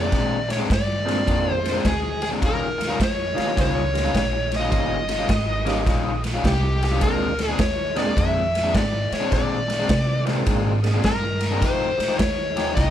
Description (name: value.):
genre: electric blues shuffle.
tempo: 104 BPM.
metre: 4/4.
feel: swing 65% on 8ths.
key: Bb mixolydian.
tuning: A4 = 440 Hz.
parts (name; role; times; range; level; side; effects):
dark smooth lead guitar; melody; 0.0-12.9 s; G4 to E5; -25 LUFS; left 1 dB; overdrive.
percussive tonewheel organ; accompaniment; 0.0-11.0 s; G3 to Ab4; -29 LUFS; right 7 dB; slow rotary speaker, overdrive, chorus vibrato.
overdriven semi-hollow guitar; riff; 0.0-12.9 s; Bb2 to G4; -26 LUFS; left 4 dB; none.
upright bass; bass; 0.0-12.9 s; G1 to C3; -26 LUFS; equal; none.
raw garage drum kit; drums; 0.1-12.9 s; kick drum, ride cymbal, snare drum; -24 LUFS; equal; none.
room: light reverb.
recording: none.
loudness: -19 LUFS.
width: side -10 dB against mid.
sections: 0.0-12.9 A section.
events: none.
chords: 0.0 Bb9; 2.4 Eb9; 7.0 Bb9; 11.6 F9.